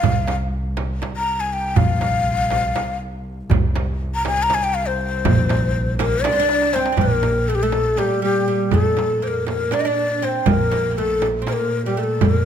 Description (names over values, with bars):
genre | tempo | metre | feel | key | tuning
Turkish makam ensemble | 242 BPM (eighths) | 7/8 | straight | C makam ussak, Bb makam rast from 7.0 s | A4 = 440 Hz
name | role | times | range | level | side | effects
breathy mellow ney | melody | 0.0-12.4 s | G4 to Bb5 | -20 LUFS | left 4 dB | none
upright bass | bass | 0.0-12.4 s | Bb1 to F2 | -22 LUFS | equal | none
rich double bass | drone | 0.0-12.4 s | C2 to Bb2 | -29 LUFS | equal | none
darbuka | percussion | 0.0-12.3 s | none | -25 LUFS | left 2 dB | none
frame drum | percussion | 0.0-12.3 s | none | -24 LUFS | right 8 dB | none
oud | second line | 6.0-12.4 s | G3 to D4 | -24 LUFS | right 7 dB | none
room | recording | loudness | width
moderate recital hall reverb, RT60 1.5 s | close, detailed microphones | -17 LUFS | side -9 dB against mid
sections
0.0-7.0 A section; 7.0-12.4 B section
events
drum fill 6.5-7.0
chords
none